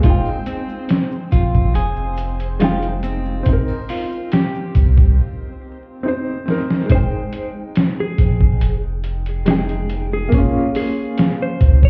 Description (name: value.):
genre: trip hop.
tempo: 70 BPM.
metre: 4/4.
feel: straight.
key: F minor.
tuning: A4 = 440 Hz.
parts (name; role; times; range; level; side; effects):
felt-muted upright piano; accompaniment; 0.0-11.9 s; Ab3 to G5; -26 LUFS; equal; tremolo, tape echo.
clean electric guitar; arpeggios; 0.0-5.1 s; C4 to Ab4; -29 LUFS; equal; tape echo.
warm sub bass; bass; 0.0-11.9 s; F1 to Db2; -20 LUFS; equal; none.
trip hop sampler-style drum kit; drums; 0.0-11.9 s; hi-hat, kick drum, snare drum; -19 LUFS; equal; studio reverb.
maracas and triangle; percussion; 0.0-5.1 s; none; -58 LUFS; equal; none.
backwards swelling texture; texture; 0.0-5.2 s; C4 to C5; -37 LUFS; equal; built-in reverb.
clean lap steel guitar; melody; 6.9-11.9 s; Ab4 to Db5; -29 LUFS; equal; vintage 12-bit sampler grit.
room: little or no reverb.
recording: heard muffled through a wall, club reverb, vinyl crackle, EQ.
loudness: -18 LUFS.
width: mono.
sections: 0.0-6.9 A section; 6.9-11.9 B section.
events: break 5.2-6.9; drum fill 6.5-6.9.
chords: 0.0 Fm9; 3.5 Cm7; 6.9 Fm9; 10.3 Db6.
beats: | 0.04 0.90 1.75 2.61 | 3.47 4.33 5.18 6.04 | 6.90 7.75 8.61 9.47 | 10.33 11.18.